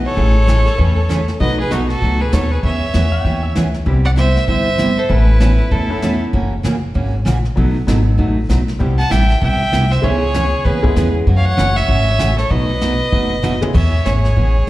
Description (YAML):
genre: country, western swing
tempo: 195 BPM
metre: 4/4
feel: swing 60% on 8ths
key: E major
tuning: A4 = 439 Hz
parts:
  - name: bright upright piano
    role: accompaniment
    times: 0.0-11.2, 13.6-13.7 s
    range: E3 to A4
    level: -23 LUFS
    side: left 3 dB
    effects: slapback echo
  - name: upright bass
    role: bass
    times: 0.0-14.7 s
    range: F#1 to F#2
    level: -16 LUFS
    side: equal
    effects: none
  - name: clear fiddle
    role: melody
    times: 0.1-6.2, 9.0-14.7 s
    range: F#4 to A5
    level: -21 LUFS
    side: equal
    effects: plate reverb, slapback echo
  - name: clear fiddle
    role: second line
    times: 0.1-6.2, 9.0-14.7 s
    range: D#4 to F#5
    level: -25 LUFS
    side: right 2 dB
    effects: plate reverb, slapback echo
  - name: picked steel-string acoustic guitar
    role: accompaniment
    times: 0.2-14.7 s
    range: B2 to A4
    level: -20 LUFS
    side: right 2 dB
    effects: slapback echo
  - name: jazz brush drum kit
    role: drums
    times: 0.2-14.7 s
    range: brushed snare drum, crash cymbal, hi-hat, kick drum, snare drum, toms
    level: -21 LUFS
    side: equal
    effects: none
  - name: clean lap steel guitar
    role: second line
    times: 0.5-3.7 s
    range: G#4 to G5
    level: -28 LUFS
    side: left 3 dB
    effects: plate reverb, slapback echo
room: light reverb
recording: live gig heard through the venue's PA, recital hall reverb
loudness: -13 LUFS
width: side -16 dB against mid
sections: 0.0-3.9 A section; 3.9-13.7 B section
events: drum fill 13.4-13.7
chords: 0.2 Amaj7; 1.4 B7; 2.6 E6; 3.9 Cmaj7; 5.1 Aadd9; 6.3 F#7; 7.6 B7; 8.8 Cmaj7; 10.0 C#m7; 11.3 F#m7; 12.5 B7; 13.7 E6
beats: | 0.17 0.48 0.78 1.09 | 1.40 1.71 2.02 2.32 | 2.63 2.94 3.25 3.56 | 3.86 4.17 4.48 4.79 | 5.10 5.41 5.71 6.02 | 6.33 6.64 6.95 7.25 | 7.56 7.87 8.18 8.49 | 8.80 9.11 9.41 9.72 | 10.03 10.34 10.65 10.96 | 11.26 11.57 11.88 12.19 | 12.50 12.81 13.12 13.43 | 13.74 14.05 14.36 14.68